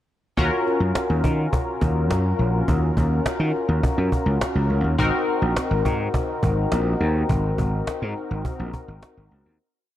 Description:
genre	early-eighties boogie funk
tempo	104 BPM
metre	4/4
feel	straight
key	Eb dorian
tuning	A4 = 440 Hz
part	funky polysynth comp	accompaniment	0.4-9.6 s	C4 to Bb4	-24 LUFS	left 2 dB	chorus
part	gritty slap bass	bass	0.4-9.6 s	Ab1 to Eb3	-22 LUFS	equal	overdrive
part	cajon	drums	0.4-9.2 s	none	-26 LUFS	equal	none
room	moderate plate reverb, RT60 2.1 s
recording	dreamy mix soaked in reverb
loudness	-20 LUFS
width	side -13 dB against mid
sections	0.4-9.6 verse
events	fade-out 7.3-9.6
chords	0.4 Ebm9; 5.0 Ab9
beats	| 0.37 0.95 1.52 2.10 | 2.68 3.25 3.83 4.41 | 4.99 5.56 6.14 6.72 | 7.29 7.87 8.45 9.03

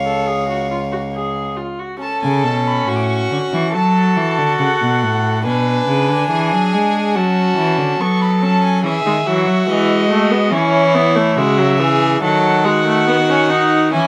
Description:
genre	classical, baroque-style fugue for string quartet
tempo	70 BPM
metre	4/4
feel	straight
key	F# minor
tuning	A4 = 440 Hz
part	dark violin	melody	0.0-14.1 s	C#5 to D6	-23 LUFS	equal	none
part	warm violin	second line	0.0-14.1 s	E4 to C#5	-22 LUFS	equal	none
part	rich cello	bass	0.0-14.1 s	C#2 to G#3	-20 LUFS	equal	none
part	rich viola	accompaniment	0.1-14.1 s	E3 to A4	-22 LUFS	equal	none
room	light reverb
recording	none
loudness	-16 LUFS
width	mono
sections	0.0-2.0 A section; 2.0-14.1 B section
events	none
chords	0.0 C#; 2.0 F#m; 5.5 G#dim/B; 7.2 F#m; 8.8 C#m (rootless); 10.5 C#m/E; 12.2 D#dim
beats	0.27 1.14 | 2.01 2.87 3.74 4.60 | 5.46 6.31 7.16 8.00 | 8.84 9.68 10.52 11.36 | 12.22 13.07 13.93

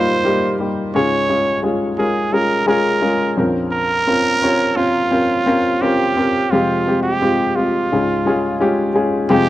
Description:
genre	pop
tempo	86 BPM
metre	4/4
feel	straight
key	unclear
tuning	A4 = 440 Hz
part	growling trumpet	melody	0.0-9.5 s	F4 to Db5	-19 LUFS	right 3 dB	none
part	warm baby grand piano	accompaniment	0.0-9.5 s	Bb1 to Db5	-16 LUFS	left 2 dB	none
room	light reverb, small room ambience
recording	dry, close 1970s-style studio recording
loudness	-15 LUFS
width	side -14 dB against mid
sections	0.0-9.3 A section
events	none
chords	0.0 Eb; 0.9 Db; 3.4 Bbmadd9; 6.5 Fmadd9; 7.9 Db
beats	0.24 | 0.94 1.64 2.33 3.03 | 3.73 4.42 5.12 5.82 | 6.51 7.21 7.91 8.61 | 9.30

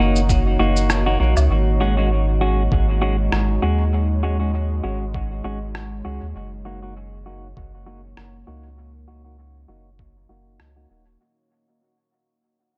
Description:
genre	ambient dub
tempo	99 BPM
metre	4/4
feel	swing 56% on 16ths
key	unclear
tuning	A4 = 440 Hz
part	deep dark ambient pad	sustained chords	0.0-11.2 s	Ab3 to Db5	-30 LUFS	equal	chorus, built-in reverb, vintage 12-bit sampler grit
part	clean electric guitar	stabs	0.0-11.0 s	Ab3 to Gb4	-28 LUFS	equal	low-pass filter, dub echo
part	soft dub sub bass	bass	0.0-11.2 s	Eb1 to Eb2	-23 LUFS	equal	none
part	electronic shaker, rim click and woodblock	drums	0.2-10.7 s	none	-28 LUFS	equal	dub echo
part	electronic kick drum	drums	0.3-10.1 s	none	-24 LUFS	equal	none
room	light reverb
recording	none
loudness	-20 LUFS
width	mono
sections	0.0-11.2 A section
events	fade-out 0.0-11.2; filter sweep on clean electric guitar 0.0-11.2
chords	0.0 Gb6; 1.5 Ab7sus4; 6.4 Gb6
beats	0.29 0.90 | 1.50 2.11 2.72 3.32 | 3.93 4.54 5.14 5.75 | 6.35 6.96 7.57 8.17 | 8.78 9.38 9.99 10.60

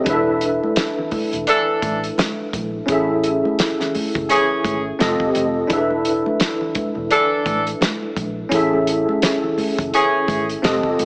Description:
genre	lush 1970s-style soul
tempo	85 BPM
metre	4/4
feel	swing 58% on 16ths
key	A major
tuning	A4 = 439 Hz
part	bell-like tine electric piano	accompaniment	0.0-11.1 s	C4 to E5	-19 LUFS	equal	ensemble chorus
part	vintage muted fingered electric bass	bass	0.1-11.1 s	E1 to Bb1	-31 LUFS	equal	none
part	warm soul drum kit	drums	0.1-11.1 s	hi-hat, kick drum, snare drum	-22 LUFS	equal	none
part	congas	percussion	0.6-11.1 s	none	-30 LUFS	equal	none
part	mellow horn section	stabs	1.5-10.5 s	E3 to A4	-16 LUFS	equal	none
room	light reverb, studio reverb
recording	small speaker sound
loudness	-16 LUFS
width	side -29 dB against mid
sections	0.0-11.1 A section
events	none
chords	0.1 E7sus4; 2.9 Amaj7; 5.0 F9; 5.7 E7sus4; 8.5 Amaj7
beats	| 0.07 0.77 1.48 2.18 | 2.88 3.59 4.29 5.00 | 5.70 6.41 7.11 7.82 | 8.52 9.22 9.93 10.63

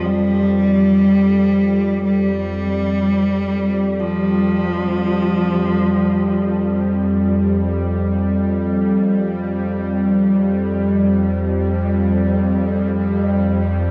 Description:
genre	dark ambient drone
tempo	free time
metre	none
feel	none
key	unclear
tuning	A4 = 440 Hz
part	rich cello	melody	0.0-7.0 s	F3 to G3	-20 LUFS	equal	tape echo
part	bowed-like drone	drone	0.0-13.9 s	F2 to G3	-19 LUFS	equal	built-in reverb
room	wet huge ambient reverb, RT60 8.2 s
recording	worn, warbling old tape, cassette tape, warbly pitch drift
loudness	-18 LUFS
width	mono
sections	0.0-13.9 A section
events	none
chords	0.0 Fsus2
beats	free time

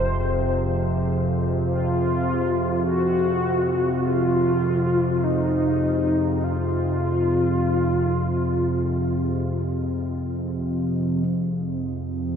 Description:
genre	ambient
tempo	free time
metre	none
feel	none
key	F minor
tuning	A4 = 439 Hz
part	mellow horn-like synth lead	melody	0.0-10.0 s	Eb4 to C5	-24 LUFS	left 1 dB	analog chorus, ping-pong delay
part	deep dark ambient pad	sustained chords	0.0-12.4 s	Ab4 to F5	-36 LUFS	right 3 dB	chorus, built-in reverb
part	analog drone	drone	0.0-12.4 s	F2 to C3	-23 LUFS	equal	chorus
part	bronze singing bowl	texture	0.0-12.4 s	C4 to F5	-36 LUFS	right 4 dB	none
room	wet huge ambient reverb, RT60 7.6 s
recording	none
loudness	-20 LUFS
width	side -7 dB against mid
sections	0.0-11.2 A section; 11.2-12.4 B section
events	none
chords	0.0 F5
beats	free time

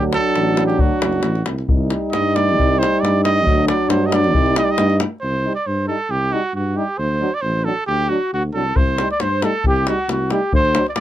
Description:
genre	balkan folk, Balkan brass band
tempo	136 BPM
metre	2/4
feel	swing 53% on 16ths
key	C dorian sharp4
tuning	A4 = 445 Hz
part	clear trumpet	melody	0.0-11.0 s	F#4 to Eb5	-20 LUFS	right 3 dB	none
part	clear French horn	accompaniment	0.0-10.8 s	D4 to Eb4	-23 LUFS	left 6 dB	none
part	clear euphonium	accompaniment	0.0-10.8 s	F#3 to G3	-23 LUFS	right 6 dB	none
part	mellow tuba	bass	0.0-11.0 s	F#1 to G2	-21 LUFS	equal	none
part	davul	percussion	0.1-5.1, 8.8-11.0 s	none	-21 LUFS	left 2 dB	none
part	warm flugelhorn	second line	7.9-11.0 s	F#4 to D5	-24 LUFS	left 4 dB	none
room	light reverb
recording	none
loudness	-16 LUFS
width	side -12 dB against mid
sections	0.0-5.2 A section; 5.2-11.0 B section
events	trumpet solo 0.0-5.2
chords	0.0 D; 1.7 Cm; 3.5 D; 4.3 Cm; 7.0 D; 8.8 Cm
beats	0.36 | 0.80 1.24 | 1.68 2.12 | 2.57 3.01 | 3.45 3.89 | 4.33 4.78 | 5.22 5.66 | 6.10 6.55 | 6.99 7.43 | 7.88 8.32 | 8.76 9.21 | 9.65 10.09 | 10.54 10.98

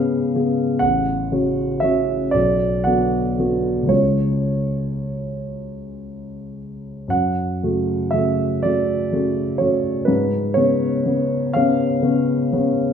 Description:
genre	classical, romantic nocturne for solo piano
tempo	36-42 BPM (dotted quarters)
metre	6/8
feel	rubato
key	F# minor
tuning	A4 = 436 Hz
part	warm concert grand piano	solo	0.0-12.9 s	A1 to F#5	-18 LUFS	equal	none
room	wet recital hall reverb, RT60 1.5 s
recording	minimal, uncompressed stereo recording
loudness	-17 LUFS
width	side -8 dB against mid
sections	0.0-12.9 A section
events	none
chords	0.0 C#7/G#; 0.8 F#m/A; 2.4 Bm; 3.9 C#; 7.1 F#m; 10.1 C#7/G#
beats	| 0.84 2.35 | 3.92 5.53 | 7.12 8.65 | 10.10 11.55

